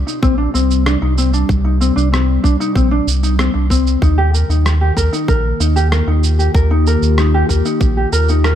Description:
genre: folktronica.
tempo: 95 BPM.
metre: 4/4.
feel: straight.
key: C minor.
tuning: A4 = 437 Hz.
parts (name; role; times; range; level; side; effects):
warbly tape-like pad; sustained chords; 0.0-8.6 s; C3 to G4; -22 LUFS; left 1 dB; chorus, built-in reverb.
warm sub bass; bass; 0.0-8.5 s; Bb1 to Eb2; -14 LUFS; equal; none.
ukulele; arpeggios; 0.1-8.6 s; C4 to Bb4; -18 LUFS; left 1 dB; vintage 12-bit sampler grit, digital delay.
electronic shaker and rim click; drums; 0.1-8.6 s; none; -24 LUFS; right 2 dB; overdrive.
electronic kick drum; drums; 0.2-7.9 s; none; -16 LUFS; equal; none.
room: little or no reverb.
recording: dark, warm production.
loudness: -12 LUFS.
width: side -10 dB against mid.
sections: 0.0-8.6 A section.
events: none.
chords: 0.0 Cmadd9; 4.0 Eb.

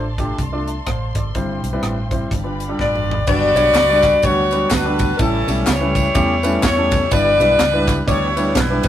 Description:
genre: uptempo gospel.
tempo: 125 BPM.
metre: 4/4.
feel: swing 59% on 8ths.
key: unclear.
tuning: A4 = 444 Hz.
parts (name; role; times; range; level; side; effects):
warm grand piano; accompaniment; 0.0-8.9 s; G2 to A5; -22 LUFS; equal; none.
warm studio string section; sustained chords; 0.0-3.3 s; C5 to C6; -33 LUFS; left 1 dB; none.
vintage muted fingered electric bass; bass; 0.0-8.9 s; G1 to E2; -23 LUFS; right 1 dB; none.
tight funk drum kit; drums; 0.2-8.9 s; crash cymbal, hi-hat, kick drum, ride cymbal, rim click, snare drum, toms; -22 LUFS; equal; none.
mellow saxophone section; melody; 2.8-8.9 s; C#4 to D5; -16 LUFS; left 1 dB; none.
bright tonewheel organ; sustained chords; 3.3-8.9 s; E3 to G4; -30 LUFS; right 1 dB; none.
tambourine and handclaps; percussion; 3.3-8.9 s; none; -29 LUFS; left 2 dB; none.
room: wet booth ambience, RT60 0.2 s.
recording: rough rehearsal-room recording.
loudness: -15 LUFS.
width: side -11 dB against mid.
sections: 0.0-3.3 A section; 3.3-8.9 B section.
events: drum fill 2.8-3.3.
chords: 0.0 F6; 1.4 C/G; 2.3 G7; 3.3 Gmaj7; 5.2 A7; 7.1 G6.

